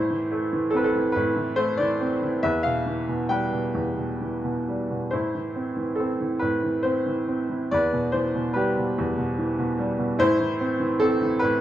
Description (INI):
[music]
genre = classical, lyrical solo piano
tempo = 63-74 BPM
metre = 3/4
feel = rubato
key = unclear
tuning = A4 = 436 Hz
[part]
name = bright baby grand piano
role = solo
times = 0.0-11.6 s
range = E2 to G5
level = -22 LUFS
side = equal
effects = none
[sound]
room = moderate recital hall reverb, RT60 1.3 s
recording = dark, warm production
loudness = -22 LUFS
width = side -12 dB against mid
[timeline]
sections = 0.0-11.6 A section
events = none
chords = 0.0 Am; 2.4 Em; 5.1 Am; 7.7 Em7; 10.2 Am